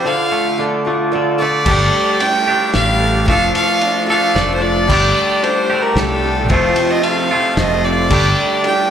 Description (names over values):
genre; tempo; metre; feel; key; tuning
folk rock and heartland rock; 112 BPM; 3/4; straight; unclear; A4 = 436 Hz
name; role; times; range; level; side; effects
rich fiddle; melody; 0.0-8.9 s; A4 to G5; -17 LUFS; equal; plate reverb, slapback echo
clear concert grand piano; accompaniment; 0.0-1.7, 8.1-8.9 s; D4 to D5; -25 LUFS; right 2 dB; none
picked old ladder-braced acoustic guitar; accompaniment; 0.0-8.9 s; G2 to A4; -22 LUFS; left 7 dB; plate reverb, slapback echo
tonewheel organ; sustained chords; 0.0-8.9 s; C4 to D5; -24 LUFS; right 2 dB; chorus vibrato, lush chorus, plate reverb
twangy electric guitar; riff; 0.0-8.9 s; F2 to A4; -18 LUFS; right 3 dB; slapback echo
modern bright fingered electric bass; bass; 1.7-8.3 s; F1 to C2; -18 LUFS; equal; none
cloth-damped thuddy drum kit; drums; 1.7-8.8 s; crash cymbal, kick drum, ride cymbal, snare drum; -21 LUFS; equal; none
room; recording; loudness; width
light reverb; live gig heard through the venue's PA, club reverb; -12 LUFS; side -8 dB against mid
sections
0.0-1.7 A section; 1.7-8.9 B section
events
break 0.1-1.7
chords
0.1 Dm; 1.7 Gsus2; 3.3 Dm/F; 4.9 Gsus2; 6.5 F; 8.1 Gsus2